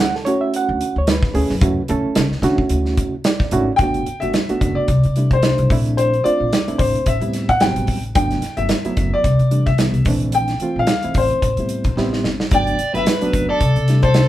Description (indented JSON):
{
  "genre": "electric jazz fusion",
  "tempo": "110 BPM",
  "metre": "4/4",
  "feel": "swing 56% on 16ths",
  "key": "unclear",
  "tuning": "A4 = 441 Hz",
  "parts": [
    { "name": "reed electric piano", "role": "accompaniment", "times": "0.0-14.3 s", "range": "E3 to F#5", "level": "-22 LUFS", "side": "right 2 dB", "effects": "fast tremolo" },
    { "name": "upright bass", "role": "bass", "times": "0.0-14.3 s", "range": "F#1 to D3", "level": "-20 LUFS", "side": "left 1 dB", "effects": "none" },
    { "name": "modern studio drum kit", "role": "drums", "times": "0.2-14.3 s", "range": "hi-hat, kick drum, snare drum", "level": "-20 LUFS", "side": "right 1 dB", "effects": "none" },
    { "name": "warm baby grand piano", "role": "melody", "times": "3.8-14.3 s", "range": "C5 to G5", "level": "-20 LUFS", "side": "left 2 dB", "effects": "none" },
    { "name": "overdriven semi-hollow guitar", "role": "second line", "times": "12.5-14.3 s", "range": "A4 to D5", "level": "-22 LUFS", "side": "right 2 dB", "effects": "none" }
  ],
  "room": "moderate studio reverb, RT60 0.5 s",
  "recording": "band playing live in one room",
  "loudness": "-15 LUFS",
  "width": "side -14 dB against mid",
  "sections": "0.0-3.8 A section; 3.8-14.3 B section",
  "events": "reed electric piano fill 3.0-3.8; drum fill 12.0-12.5",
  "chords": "0.0 Dmaj9; 3.8 Gmaj9; 4.9 C69; 5.7 Bbmaj9#11; 7.1 Am9; 8.2 Gmaj9; 9.3 C69; 10.1 Bbmaj9#11; 11.4 Am9; 12.5 Gmaj9; 13.6 C69",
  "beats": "0.54 1.08 | 1.62 2.17 2.71 3.26 | 3.80 4.35 4.89 5.43 | 5.98 6.53 7.07 7.62 | 8.16 8.71 9.25 9.80 | 10.34 10.89 11.43 11.98 | 12.52 13.07 13.62 14.16"
}